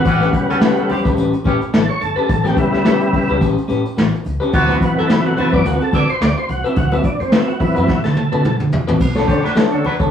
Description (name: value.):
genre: funk.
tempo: 107 BPM.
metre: 4/4.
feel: swing 56% on 16ths.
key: A mixolydian.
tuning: A4 = 440 Hz.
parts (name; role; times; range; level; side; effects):
electric guitar through a small old amp; accompaniment; 0.0-10.1 s; C4 to C#5; -21 LUFS; left 2 dB; spring reverb.
tonewheel organ; stabs; 0.0-10.1 s; B2 to D5; -18 LUFS; equal; chorus vibrato, slow rotary speaker.
vintage muted fingered electric bass; bass; 0.0-10.1 s; G1 to D3; -21 LUFS; left 1 dB; none.
congas; percussion; 0.0-10.0 s; none; -27 LUFS; right 2 dB; none.
clear horn section; second line; 0.1-9.9 s; C3 to C5; -21 LUFS; equal; none.
vintage brush drum kit; drums; 0.1-10.1 s; crash cymbal, hi-hat, kick drum, snare drum, toms; -18 LUFS; left 1 dB; none.
room: wet studio reverb, RT60 0.6 s.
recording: rough rehearsal-room recording, tube saturation, studio reverb.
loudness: -14 LUFS.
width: side -8 dB against mid.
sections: 0.0-9.0 A section; 9.0-10.1 B section.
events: tonewheel organ solo 0.0-9.0; drum fill 7.9-9.0.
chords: 0.1 A9; 4.5 D13; 9.0 Bm9.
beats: | 0.06 0.62 1.18 1.74 | 2.29 2.85 3.41 3.97 | 4.53 5.09 5.65 6.21 | 6.77 7.33 7.89 8.45 | 9.01 9.56.